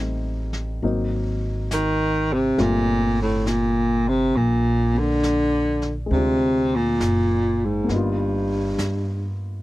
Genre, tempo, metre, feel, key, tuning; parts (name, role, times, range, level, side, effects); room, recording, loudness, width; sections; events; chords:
jazz ballad; 68 BPM; 4/4; swing 69% on 8ths; G minor; A4 = 440 Hz
warm baby grand piano; accompaniment; 0.0-9.6 s; Gb3 to F4; -29 LUFS; left 3 dB
upright bass; bass; 0.0-9.6 s; F#1 to G2; -25 LUFS; equal
vintage brush drum kit; drums; 0.5-9.6 s; brushed snare drum, hi-hat, snare drum; -36 LUFS; left 1 dB
mellow baritone saxophone; melody; 1.7-9.4 s; G2 to Eb3; -20 LUFS; equal
little or no reverb; dry, close 1970s-style studio recording; -19 LUFS; side -17 dB against mid
0.0-9.6 A section
0.0 Am7b5; 0.8 Ab9; 2.6 Gm11; 6.1 Dm7b5; 7.9 G7alt